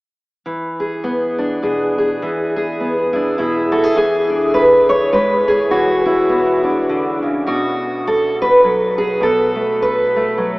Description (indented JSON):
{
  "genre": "folk, solo fingerstyle acoustic guitar",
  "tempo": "103 BPM",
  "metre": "3/4",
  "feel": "swing 58% on 8ths",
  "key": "unclear",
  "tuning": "A4 = 441 Hz",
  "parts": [
    { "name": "fingerpicked steel-string acoustic guitar", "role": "solo", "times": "0.5-10.6 s", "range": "B2 to C#5", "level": "-14 LUFS", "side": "equal", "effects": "wide subtle chorus" }
  ],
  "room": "wet huge ambient reverb, RT60 7.6 s",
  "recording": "dreamy mix soaked in reverb, AM radio sound",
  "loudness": "-14 LUFS",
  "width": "side -22 dB against mid",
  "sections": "0.5-4.0 A section; 4.0-10.6 B section",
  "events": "none",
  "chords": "0.5 E7; 7.5 B5"
}